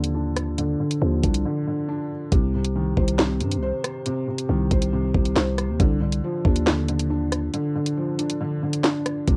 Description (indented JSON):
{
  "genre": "hip hop, drill",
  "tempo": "138 BPM",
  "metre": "4/4",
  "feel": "half-time",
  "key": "C minor",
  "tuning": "A4 = 440 Hz",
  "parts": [
    { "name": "felt-muted upright piano", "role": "accompaniment", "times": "0.0-9.4 s", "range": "C3 to C5", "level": "-28 LUFS", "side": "equal", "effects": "low-pass filter" },
    { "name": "growling 808-style bass", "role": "bass", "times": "0.0-9.4 s", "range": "C2 to G2", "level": "-26 LUFS", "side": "equal", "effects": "none" },
    { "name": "drill drum kit", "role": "drums", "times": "0.0-9.4 s", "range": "handclaps, hi-hat, kick drum, rim click, snare drum", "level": "-24 LUFS", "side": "equal", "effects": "cassette tape" }
  ],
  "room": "little or no reverb",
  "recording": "home recording on cassette",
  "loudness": "-23 LUFS",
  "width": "mono",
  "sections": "0.0-9.4 A section",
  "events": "filter sweep on felt piano 0.0-2.3; break 1.4-2.3, 7.5-9.3",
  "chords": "0.0 Cmadd9 (rootless); 2.3 Cm; 5.8 Csus4 (rootless)"
}